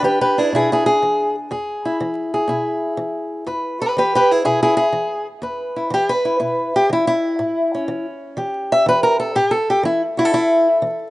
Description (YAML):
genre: acoustic country blues, solo or duo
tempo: 122 BPM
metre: 4/4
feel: swing 68% on 8ths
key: E mixolydian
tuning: A4 = 440 Hz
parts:
  - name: fingerpicked old ladder-braced acoustic guitar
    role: solo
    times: 0.0-11.1 s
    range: E2 to E5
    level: -16 LUFS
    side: equal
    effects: none
room: light reverb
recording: rough home demo mix, vinyl crackle, nothing above 10.5 kHz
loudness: -16 LUFS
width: side -17 dB against mid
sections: 0.0-11.1 A section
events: steel-string acoustic guitar solo 0.0-11.1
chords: 0.0 E7; 7.4 A7